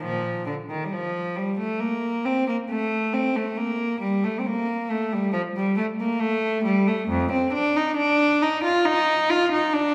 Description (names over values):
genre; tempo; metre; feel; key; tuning
classical, baroque-style suite movement for unaccompanied cello; 68 BPM; 4/4; rubato; unclear; A4 = 440 Hz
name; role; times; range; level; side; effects
rich cello; solo; 0.0-9.9 s; F2 to F4; -24 LUFS; equal; none
room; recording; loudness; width
wet recital hall reverb, RT60 1.4 s; none; -24 LUFS; mono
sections
0.0-9.9 A section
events
none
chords
none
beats
| 0.02 0.92 1.80 2.69 | 3.56 4.44 5.32 6.21 | 7.08 7.97 8.85 9.73